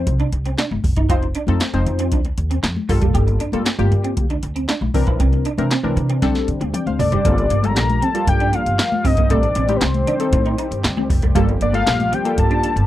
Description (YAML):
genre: early-eighties boogie funk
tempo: 117 BPM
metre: 4/4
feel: straight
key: G minor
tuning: A4 = 444 Hz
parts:
  - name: funky polysynth comp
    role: accompaniment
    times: 0.0-12.7 s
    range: E3 to G5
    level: -23 LUFS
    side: left 2 dB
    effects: chorus
  - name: semi-hollow electric guitar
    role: riff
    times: 0.0-12.7 s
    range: G3 to G4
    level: -25 LUFS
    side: right 4 dB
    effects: ensemble chorus
  - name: upright bass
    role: bass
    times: 0.0-12.9 s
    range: F1 to D3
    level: -20 LUFS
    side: equal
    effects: none
  - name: electro analog drum machine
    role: drums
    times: 0.1-12.9 s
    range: handclaps, hi-hat, kick drum, snare drum, toms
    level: -20 LUFS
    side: equal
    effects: none
  - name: congas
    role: percussion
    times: 0.1-12.6 s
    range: none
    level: -27 LUFS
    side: left 4 dB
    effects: none
  - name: fat analog lead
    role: melody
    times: 7.0-12.9 s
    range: B4 to Bb5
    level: -21 LUFS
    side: left 3 dB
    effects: chorus
  - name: warm analog pad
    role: sustained chords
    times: 7.2-12.9 s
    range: Eb3 to G4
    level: -28 LUFS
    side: right 1 dB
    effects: chorus
room: little or no reverb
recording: dry, close 1970s-style studio recording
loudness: -16 LUFS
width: side -14 dB against mid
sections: 0.0-7.3 A section; 7.3-12.9 B section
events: drum fill 6.2-7.3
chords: 0.0 F7(no3); 2.9 Gm9; 4.9 C9; 6.2 D7sus4; 7.3 Gm9; 9.3 Am7b5; 11.4 Gm9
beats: 0.07 0.58 | 1.10 1.61 2.12 2.63 | 3.15 3.66 4.17 4.69 | 5.20 5.71 6.22 6.74 | 7.25 7.76 8.28 8.79 | 9.30 9.81 10.33 10.84 | 11.35 11.87 12.38